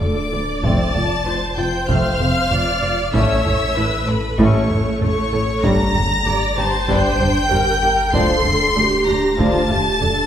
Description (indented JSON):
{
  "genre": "cinematic, hybrid orchestral and electronic film score",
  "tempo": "96 BPM",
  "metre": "4/4",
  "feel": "straight",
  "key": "G minor",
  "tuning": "A4 = 438 Hz",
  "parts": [
    { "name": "warm chamber violin section", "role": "melody", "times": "0.0-10.3 s", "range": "B5 to C7", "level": "-24 LUFS", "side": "left 3 dB", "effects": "none" },
    { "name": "warm symphonic violin section", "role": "second line", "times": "0.0-10.3 s", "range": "B4 to C6", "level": "-23 LUFS", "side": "left 1 dB", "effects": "none" },
    { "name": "warm symphonic viola section", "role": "accompaniment", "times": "0.0-10.3 s", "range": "A3 to D5", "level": "-23 LUFS", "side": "right 2 dB", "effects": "none" },
    { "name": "tight sequenced synth", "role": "arpeggios", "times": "0.0-10.2 s", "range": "D3 to A4", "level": "-27 LUFS", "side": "right 1 dB", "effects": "chorus" },
    { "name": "pure sine sub bass", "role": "bass", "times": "0.0-10.3 s", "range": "D1 to A1", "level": "-28 LUFS", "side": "equal", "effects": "none" },
    { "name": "warm symphonic cello section", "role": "bass", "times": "0.0-10.1 s", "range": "D2 to A2", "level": "-24 LUFS", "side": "right 1 dB", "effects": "none" },
    { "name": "warm symphonic double bass section", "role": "bass", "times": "0.0-10.1 s", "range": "F1 to D2", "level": "-24 LUFS", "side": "right 2 dB", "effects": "none" },
    { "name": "solo taiko drums", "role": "drums", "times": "0.0-10.3 s", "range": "none", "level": "-25 LUFS", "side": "equal", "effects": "none" },
    { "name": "warm French horn section", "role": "sustained chords", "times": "0.6-9.6 s", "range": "F3 to D4", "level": "-25 LUFS", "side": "left 2 dB", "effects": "none" }
  ],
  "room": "wet recital hall reverb, RT60 1.6 s",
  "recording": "recorded in a church or concert hall",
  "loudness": "-15 LUFS",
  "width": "side -9 dB against mid",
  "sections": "0.0-10.3 A section",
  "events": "none",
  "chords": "0.0 D5; 0.6 F; 3.1 A; 5.6 Gm; 8.1 Dm"
}